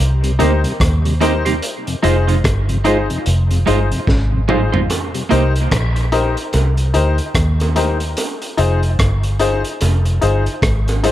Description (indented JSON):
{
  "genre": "dub reggae",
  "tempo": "73 BPM",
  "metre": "4/4",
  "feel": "swing 60% on 16ths",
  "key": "unclear",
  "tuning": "A4 = 441 Hz",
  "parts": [
    { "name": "vintage muted fingered electric bass", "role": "bass", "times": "0.0-11.1 s", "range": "F1 to Eb2", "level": "-16 LUFS", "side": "equal", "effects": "none" },
    { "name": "mellow tonewheel organ", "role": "accompaniment", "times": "0.2-5.2 s", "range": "F2 to F4", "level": "-25 LUFS", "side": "left 1 dB", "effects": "chorus vibrato, slow rotary speaker, dub echo" },
    { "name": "crunchy breakbeat drum kit", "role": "drums", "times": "0.2-11.1 s", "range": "hi-hat, kick drum, rim click, snare drum, toms", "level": "-21 LUFS", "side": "equal", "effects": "none" },
    { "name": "electric guitar at the edge of break-up", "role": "accompaniment", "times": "0.4-5.4 s", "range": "Ab3 to C5", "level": "-22 LUFS", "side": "right 8 dB", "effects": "dub echo" },
    { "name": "warm upright piano", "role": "stabs", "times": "0.4-11.1 s", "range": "Eb4 to C5", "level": "-21 LUFS", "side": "left 4 dB", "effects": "dub echo" },
    { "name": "bongos", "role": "percussion", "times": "4.9-11.1 s", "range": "none", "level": "-26 LUFS", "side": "right 3 dB", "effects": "dub echo" }
  ],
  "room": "light reverb, small room ambience",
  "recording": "none",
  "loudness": "-14 LUFS",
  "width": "side -13 dB against mid",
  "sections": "0.0-11.1 A section",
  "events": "drum fill 4.1-4.9",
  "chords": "0.0 Cm7; 1.6 Fm7; 4.9 Cm7; 8.2 Fm7"
}